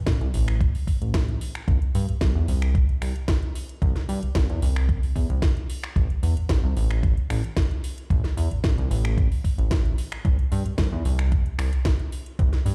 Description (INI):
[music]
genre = nu-disco, nu disco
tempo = 112 BPM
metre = 4/4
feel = straight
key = A minor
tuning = A4 = 440 Hz
[part]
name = chorused synth bass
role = bass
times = 0.0-12.7 s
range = A1 to G2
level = -26 LUFS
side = equal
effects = sidechain pumping
[part]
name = electronic kick drum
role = drums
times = 0.1-12.5 s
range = none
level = -24 LUFS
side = equal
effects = none
[part]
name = house drum kit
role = drums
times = 0.1-12.7 s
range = finger snaps, hi-hat, snare drum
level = -36 LUFS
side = equal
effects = overdrive
[sound]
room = little or no reverb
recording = played on a big sound system in a bare room, stone room reverb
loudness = -24 LUFS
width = mono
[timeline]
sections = 0.0-12.7 A section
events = none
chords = none